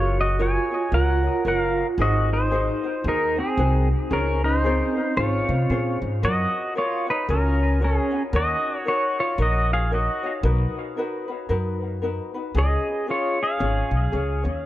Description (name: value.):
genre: Hawaiian.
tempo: 114 BPM.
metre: 4/4.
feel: swing 60% on 8ths.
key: Db major, F# major from 6.2 s.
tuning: A4 = 440 Hz.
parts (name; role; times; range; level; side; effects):
pedal steel guitar; melody; 0.0-14.4 s; C4 to Ab5; -24 LUFS; equal; tape echo.
vibraphone with soft mallets; second line; 0.0-6.0 s; Db4 to Gb4; -28 LUFS; right 4 dB; tape echo.
ukulele; accompaniment; 0.0-14.7 s; Db4 to Db5; -30 LUFS; left 2 dB; tape echo.
upright bass; bass; 0.0-14.6 s; Gb1 to C3; -23 LUFS; equal; none.
room: light reverb, small room ambience.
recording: echo-heavy mix.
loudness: -20 LUFS.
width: side -14 dB against mid.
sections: 0.0-6.2 A section; 6.2-14.7 B section.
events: none.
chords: 0.0 Gbmaj7; 2.0 Ab7; 4.1 Dbmaj7; 6.2 F#maj7; 8.3 D#m7; 10.4 Bmaj7; 12.6 C#.